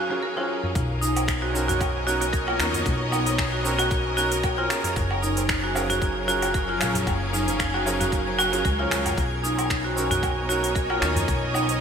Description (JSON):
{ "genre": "organic downtempo", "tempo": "114 BPM", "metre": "4/4", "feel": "swing 55% on 16ths", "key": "unclear", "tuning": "A4 = 440 Hz", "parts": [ { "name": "rich symphonic string section", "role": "sustained chords", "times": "0.0-11.8 s", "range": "B2 to F5", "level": "-29 LUFS", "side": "equal", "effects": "sidechain pumping, shimmer reverb" }, { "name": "marimba with medium hard mallets", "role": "arpeggios", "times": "0.0-11.7 s", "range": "D#4 to Bb4", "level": "-26 LUFS", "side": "right 1 dB", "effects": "ping-pong delay, shimmer reverb" }, { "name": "felt-muted upright piano", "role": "accompaniment", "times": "0.1-11.8 s", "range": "Gb3 to F5", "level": "-31 LUFS", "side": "right 2 dB", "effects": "sidechain pumping, ping-pong delay, shimmer reverb" }, { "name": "tabla", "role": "percussion", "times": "0.4-11.8 s", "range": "none", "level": "-35 LUFS", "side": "equal", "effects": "none" }, { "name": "twinkling granular texture", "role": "texture", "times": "1.2-11.8 s", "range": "Ab5", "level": "-36 LUFS", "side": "left 1 dB", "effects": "built-in reverb, wide subtle chorus, shimmer reverb" }, { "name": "upright bass", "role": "bass", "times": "0.8-11.8 s", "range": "Gb1 to D#2", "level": "-29 LUFS", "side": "equal", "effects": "tube saturation" }, { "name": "electronic kick drum", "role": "drums", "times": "0.8-11.4 s", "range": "none", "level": "-27 LUFS", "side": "equal", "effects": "overdrive" }, { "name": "organic electronic drum kit", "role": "drums", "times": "0.8-11.8 s", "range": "cabasa, finger snaps, hi-hat, woodblock", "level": "-29 LUFS", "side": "right 1 dB", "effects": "overdrive, gated reverb" } ], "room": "wet lush hall reverb, RT60 2.0 s", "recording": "bright 1980s-style digital production", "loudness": "-21 LUFS", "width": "side -7 dB against mid", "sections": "0.8-11.8 A section", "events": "none", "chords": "0.0 Gbmaj9; 0.8 Bmaj7; 5.0 Gbmaj9; 9.2 Bmaj7" }